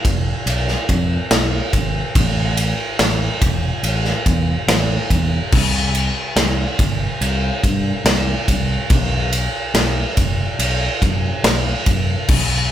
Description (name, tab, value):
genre	post-rock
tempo	71 BPM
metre	4/4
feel	straight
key	unclear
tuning	A4 = 440 Hz
part	fingered electric bass	bass	0.0-12.7 s	E1 to G2	-20 LUFS	equal	none
part	big rock drum kit	drums	0.0-12.5 s	crash cymbal, kick drum, ride cymbal, snare drum	-17 LUFS	equal	none
room	light reverb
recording	band playing live in one room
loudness	-16 LUFS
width	side -11 dB against mid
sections	0.0-12.7 A section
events	none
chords	none